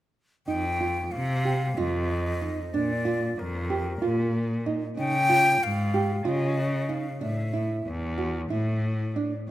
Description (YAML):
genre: contemporary instrumental, contemporary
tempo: 186 BPM (eighths)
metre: 7/8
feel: straight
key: unclear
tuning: A4 = 440 Hz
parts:
  - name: breathy jazz flute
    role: melody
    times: 0.5-7.9 s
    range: Bb4 to G5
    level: -28 LUFS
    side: left 1 dB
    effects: none
  - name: nylon-string guitar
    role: arpeggios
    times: 0.5-9.3 s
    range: D4 to G4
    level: -30 LUFS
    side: right 4 dB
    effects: none
  - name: clear cello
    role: bass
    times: 0.5-9.3 s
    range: E2 to Db3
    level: -28 LUFS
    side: left 1 dB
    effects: none
room: moderate recital hall reverb, RT60 1.7 s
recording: none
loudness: -24 LUFS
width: side -14 dB against mid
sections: 0.5-9.5 A section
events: none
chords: 0.5 Fsus2; 2.7 Bb; 5.0 Dbadd9; 7.2 A5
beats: | 0.47 0.80 1.12 1.45 1.77 2.09 2.41 | 2.73 3.06 3.38 3.70 4.02 4.33 4.65 | 4.97 5.29 5.62 5.94 6.26 6.58 6.90 | 7.22 7.54 7.86 8.19 8.51 8.84 9.16